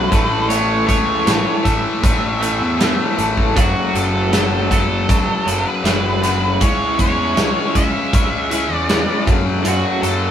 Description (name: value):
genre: quiet-loud alternative rock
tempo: 79 BPM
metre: 4/4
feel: straight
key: F# minor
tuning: A4 = 442 Hz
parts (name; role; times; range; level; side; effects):
- octave-fuzz lead guitar; melody; 0.0-10.3 s; F#4 to E5; -22 LUFS; right 2 dB; distortion
- electric guitar through a small old amp; arpeggios; 0.0-10.3 s; F#2 to A4; -24 LUFS; right 2 dB; tremolo
- distorted electric guitar; riff; 0.0-10.3 s; F#2 to C#4; -20 LUFS; left 4 dB; overdrive
- fuzz picked electric bass; bass; 0.0-10.3 s; F#1 to F#2; -23 LUFS; equal; overdrive
- big rock drum kit; drums; 0.1-10.2 s; hi-hat, kick drum, snare drum; -19 LUFS; equal; none
room: moderate stone room reverb, RT60 1.0 s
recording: band playing live in one room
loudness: -14 LUFS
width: side -9 dB against mid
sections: 0.0-10.3 A section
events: none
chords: 0.1 A; 3.6 F#m; 6.6 C#m; 9.3 F#m